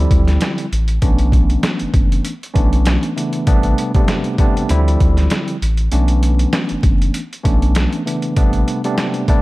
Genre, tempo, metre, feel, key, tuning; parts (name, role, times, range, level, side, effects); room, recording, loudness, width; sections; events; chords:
hip hop, boom-bap hip-hop; 98 BPM; 4/4; swing 57% on 16ths; A4 = 439 Hz
tine electric piano; accompaniment; 0.0-9.4 s; C3 to E4; -20 LUFS; equal; fast stereo tremolo, high-pass filter, low-pass filter
soft dub sub bass; bass; 0.0-8.6 s; F#1 to D2; -16 LUFS; equal
boom bap sampler-style drum kit; drums; 0.1-9.4 s; hi-hat, kick drum, snare drum; -17 LUFS; equal
little or no reverb; vinyl crackle; -14 LUFS; side -20 dB against mid
0.0-9.4 A section
kick muted 5.9-6.5
0.0 Dm11; 1.0 Bm11; 3.5 Am11; 4.7 Dm11; 5.9 Bm11; 8.4 Am11